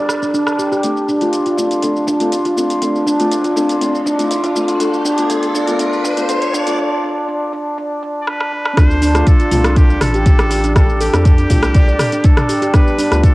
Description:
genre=afro house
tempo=121 BPM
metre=4/4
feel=straight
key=D dorian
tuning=A4 = 441 Hz
part: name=handpan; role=arpeggios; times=0.0-13.2 s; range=D4 to D5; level=-16 LUFS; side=equal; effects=sidechain pumping, cassette tape, tape echo
part: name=deep mellow chord stab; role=stabs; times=0.0-13.2 s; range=G3 to B4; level=-23 LUFS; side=left 2 dB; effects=chorus, cassette tape, sidechain pumping, tape echo
part: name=deep house drum kit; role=drums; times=0.1-13.3 s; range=hi-hat, rim click, shaker, toms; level=-22 LUFS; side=equal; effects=high-pass filter on perc, cassette tape, high-pass filter on snare, high-pass filter on hats, high-pass filter on toms
part: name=riser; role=sound effects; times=2.4-6.8 s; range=none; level=-26 LUFS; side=left 1 dB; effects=none
part: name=trumpet with straight mute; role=melody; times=8.2-13.3 s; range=G4 to D5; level=-23 LUFS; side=equal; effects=cassette tape, tape echo
part: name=round analog bass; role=bass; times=8.8-13.3 s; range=A1 to F2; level=-17 LUFS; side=equal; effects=sidechain pumping
part: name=electronic kick drum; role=drums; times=8.8-13.3 s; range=none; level=-10 LUFS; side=equal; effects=cassette tape
room=moderate spring reverb, RT60 2.6 s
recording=home recording on cassette, high-pass filter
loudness=-12 LUFS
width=side -20 dB against mid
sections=0.0-8.8 A section; 8.8-13.3 B section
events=build-up 0.0-8.8; filter sweep on synth stab 0.0-8.8; drum fill 0.8-6.8, 8.3-8.8; riser 2.4-6.8; break 6.8-8.8; drop 8.8-13.3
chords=0.0 G; 0.8 Dm7; 4.8 Bm7b5/A; 8.8 Dm7; 12.7 G

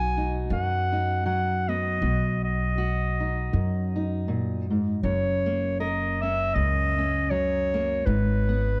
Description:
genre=folk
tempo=79 BPM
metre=4/4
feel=swing 56% on 8ths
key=B major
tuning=A4 = 440 Hz
part: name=bright clarinet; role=melody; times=0.0-8.8 s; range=B4 to G#5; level=-30 LUFS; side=equal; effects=analog delay
part: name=fingerpicked steel-string acoustic guitar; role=accompaniment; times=0.0-8.8 s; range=F#2 to A#4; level=-31 LUFS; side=equal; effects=none
part: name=upright bass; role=bass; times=0.0-8.8 s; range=F#1 to F#2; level=-30 LUFS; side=equal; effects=none
room=moderate large studio reverb, RT60 1.1 s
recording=dark, warm production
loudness=-26 LUFS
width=mono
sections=0.0-8.8 A section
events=none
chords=0.0 B; 5.0 F#; 8.1 E/G# (rootless)

